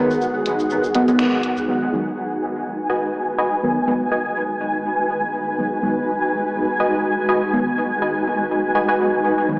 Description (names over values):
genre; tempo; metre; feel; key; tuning
dub techno; 123 BPM; 4/4; swing 56% on 16ths; G# minor; A4 = 440 Hz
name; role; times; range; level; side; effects
granular cloud pad; sustained chords; 0.0-9.6 s; G#3 to B4; -22 LUFS; equal; built-in reverb, vintage 12-bit sampler grit
deep mellow chord stab; stabs; 0.0-9.6 s; D#3 to B3; -22 LUFS; equal; chorus, phaser, dub echo
soft dub sub bass; bass; 0.0-1.6 s; F#1 to C#2; -44 LUFS; equal; none
flickering grainy texture; texture; 0.0-9.6 s; F#5 to G#5; -24 LUFS; equal; built-in reverb, analog chorus
deep house drum kit; drums; 0.1-1.7 s; finger snaps, hi-hat, shaker; -29 LUFS; equal; low-pass filter on perc, low-pass filter on hats, low-pass filter on snare, dub echo
filtered dub chord stab; riff; 2.9-9.0 s; F#4 to G#5; -24 LUFS; equal; chorus, dub echo
room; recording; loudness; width
wet lush hall reverb, RT60 1.9 s; dreamy mix soaked in reverb, AM radio sound; -18 LUFS; side -26 dB against mid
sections
0.0-1.7 A section; 1.7-9.6 B section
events
band accent 1.2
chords
0.0 G#m7